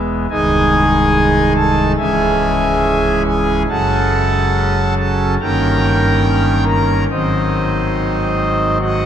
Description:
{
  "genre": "classical, chorale-style piece for pipe organ",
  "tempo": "70 BPM",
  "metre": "4/4",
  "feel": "rubato",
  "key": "unclear",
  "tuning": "A4 = 440 Hz",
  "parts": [
    { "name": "pipe organ, foundations", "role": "solo", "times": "0.0-9.1 s", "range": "B#0 to A#5", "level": "-13 LUFS", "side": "equal", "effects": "none" }
  ],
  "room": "wet cathedral reverb, RT60 5.8 s",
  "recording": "in a vast, echoing space",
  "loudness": "-13 LUFS",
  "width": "side -9 dB against mid",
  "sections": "0.0-9.1 A section",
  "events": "none",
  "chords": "0.3 G#/B#; 2.0 C#m; 3.7 F#m; 5.4 D#7/G; 7.1 G#7"
}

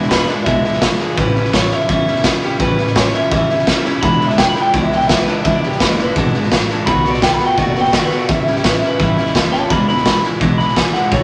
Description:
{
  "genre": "rockabilly",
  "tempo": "169 BPM",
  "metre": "4/4",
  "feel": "straight",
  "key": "E mixolydian",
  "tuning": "A4 = 440 Hz",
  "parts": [
    { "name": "electric guitar through a small old amp", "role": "melody", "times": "0.0-11.2 s", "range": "E4 to B5", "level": "-20 LUFS", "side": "equal", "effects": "spring reverb" },
    { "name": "picked steel-string acoustic guitar", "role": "accompaniment", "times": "0.0-11.2 s", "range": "E2 to F#4", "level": "-21 LUFS", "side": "equal", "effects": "none" },
    { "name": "upright bass", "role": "bass", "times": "0.0-11.2 s", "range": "E1 to E2", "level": "-27 LUFS", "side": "equal", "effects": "none" },
    { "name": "raw garage drum kit", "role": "drums", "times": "0.0-11.2 s", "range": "hi-hat, kick drum, snare drum", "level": "-19 LUFS", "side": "equal", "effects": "none" }
  ],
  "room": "wet small room reverb, RT60 0.5 s",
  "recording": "none",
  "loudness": "-15 LUFS",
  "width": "mono",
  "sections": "0.0-11.2 A section",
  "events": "none",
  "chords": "0.0 E7; 1.2 A7; 4.0 E7; 6.9 B7; 8.3 A7; 9.7 E7"
}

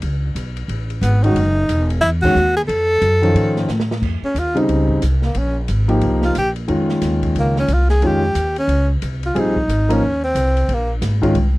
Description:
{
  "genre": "modal jazz",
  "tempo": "180 BPM",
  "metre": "4/4",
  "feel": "swing 62% on 8ths",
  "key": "Bb dorian from 4.0 s",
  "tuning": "A4 = 440 Hz",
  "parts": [
    { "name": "upright bass", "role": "bass", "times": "0.0-11.6 s", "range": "E1 to A2", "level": "-18 LUFS", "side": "equal", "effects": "none" },
    { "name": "open jazz drum kit", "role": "drums", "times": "0.0-11.4 s", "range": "crash cymbal, hi-hat, kick drum, ride cymbal, snare drum", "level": "-29 LUFS", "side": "equal", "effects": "none" },
    { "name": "breathy tenor saxophone", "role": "melody", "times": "1.0-10.9 s", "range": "Bb3 to A4", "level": "-18 LUFS", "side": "equal", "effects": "none" },
    { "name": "warm concert grand piano", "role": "accompaniment", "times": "1.2-11.3 s", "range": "Db3 to Bb4", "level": "-18 LUFS", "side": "equal", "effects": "none" }
  ],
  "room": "little or no reverb",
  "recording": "dry, close 1970s-style studio recording",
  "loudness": "-15 LUFS",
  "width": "side -19 dB against mid",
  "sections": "0.0-4.0 A section; 4.0-11.6 B section",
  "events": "band accent 2.2; drum fill 3.7-4.0; tenor saxophone solo 4.0-11.6",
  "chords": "0.0 F#madd9 (rootless); 1.4 Esus2; 2.7 F7alt; 4.0 Bbm9"
}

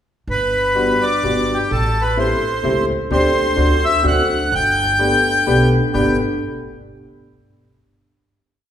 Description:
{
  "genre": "musette waltz",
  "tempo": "128 BPM",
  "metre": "3/4",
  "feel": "rubato",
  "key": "G major",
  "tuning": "A4 = 442 Hz",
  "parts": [
    { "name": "accordion", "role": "melody", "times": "0.3-6.2 s", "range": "G4 to G5", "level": "-17 LUFS", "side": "equal", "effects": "none" },
    { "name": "upright bass", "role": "bass", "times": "0.3-6.2 s", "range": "G1 to D2", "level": "-22 LUFS", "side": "right 1 dB", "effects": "none" },
    { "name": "bright upright piano", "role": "accompaniment", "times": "0.7-6.2 s", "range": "G3 to G4", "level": "-19 LUFS", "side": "left 1 dB", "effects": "none" }
  ],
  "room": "wet recital hall reverb, RT60 1.8 s",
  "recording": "recorded in a church or concert hall",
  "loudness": "-14 LUFS",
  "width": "side -9 dB against mid",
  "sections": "0.3-5.9 A section; 5.9-7.3 final chord",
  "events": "none",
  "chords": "0.3 Gmaj7; 1.7 Am7; 3.1 D7sus4; 3.6 D7; 4.5 Gadd9"
}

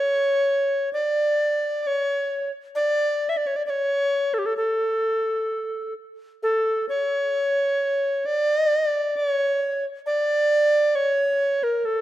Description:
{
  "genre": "caucasian folk, Caucasian lament",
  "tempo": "66 BPM",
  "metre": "4/4",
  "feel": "rubato",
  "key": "unclear",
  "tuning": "A4 = 443 Hz",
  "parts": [
    { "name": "bright bass recorder", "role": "solo", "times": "0.0-12.0 s", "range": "G4 to E5", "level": "-20 LUFS", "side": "equal", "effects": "none" }
  ],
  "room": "light reverb",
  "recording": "minimal, uncompressed stereo recording",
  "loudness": "-20 LUFS",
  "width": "side -14 dB against mid",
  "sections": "0.0-12.0 A section",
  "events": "none",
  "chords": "none"
}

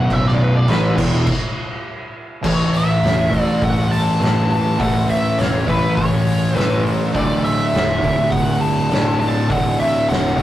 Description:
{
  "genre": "stoner and doom metal",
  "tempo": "102 BPM",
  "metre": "4/4",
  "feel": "straight",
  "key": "unclear",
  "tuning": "A4 = 442 Hz",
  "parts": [
    { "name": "fuzz lead guitar", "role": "melody", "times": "0.0-10.4 s", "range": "B4 to A5", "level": "-21 LUFS", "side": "equal", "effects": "wah, distortion, tape echo" },
    { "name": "fuzz guitar", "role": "riff", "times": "0.0-10.4 s", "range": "B1 to A3", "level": "-17 LUFS", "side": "equal", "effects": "distortion" },
    { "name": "fuzz fingered electric bass", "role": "bass", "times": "0.0-10.4 s", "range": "B0 to A1", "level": "-29 LUFS", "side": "equal", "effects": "none" },
    { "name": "oversized low-tuned drum kit", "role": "drums", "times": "0.1-10.4 s", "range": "crash cymbal, hi-hat, kick drum, snare drum", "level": "-22 LUFS", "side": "equal", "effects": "none" }
  ],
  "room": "light reverb",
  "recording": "rough rehearsal-room recording, warm saturation",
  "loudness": "-15 LUFS",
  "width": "side -13 dB against mid",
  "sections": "0.0-2.4 A section; 2.4-10.4 B section",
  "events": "lead electric guitar solo 0.0-2.4; stop 1.3-2.4",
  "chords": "0.0 B5; 1.0 E5; 1.6 N.C.; 2.4 A; 7.1 D"
}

